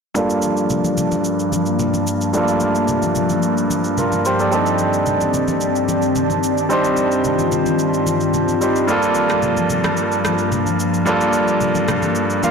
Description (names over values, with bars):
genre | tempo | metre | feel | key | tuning
amapiano | 110 BPM | 4/4 | straight | G minor | A4 = 440 Hz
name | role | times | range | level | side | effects
bright grand piano | accompaniment | 0.1-12.5 s | G2 to F5 | -18 LUFS | right 1 dB | low-pass filter
ethereal airy pad | sustained chords | 0.5-12.5 s | G2 to A5 | -20 LUFS | left 2 dB | ensemble chorus, built-in reverb, low-pass filter
electronic shaker and rim click | drums | 0.2-12.5 s | none | -28 LUFS | right 1 dB | overdrive
congas | percussion | 0.4-12.5 s | none | -28 LUFS | left 2 dB | none
room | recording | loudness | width
moderate lush hall reverb, RT60 2.0 s, small room ambience | blown-out, overdriven recording, overdrive | -16 LUFS | side -5 dB against mid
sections
0.2-12.5 A section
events
filter sweep 0.2-12.5; grand piano fill 12.2-12.5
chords
0.2 Gm9; 4.5 F13/G; 8.9 Gm9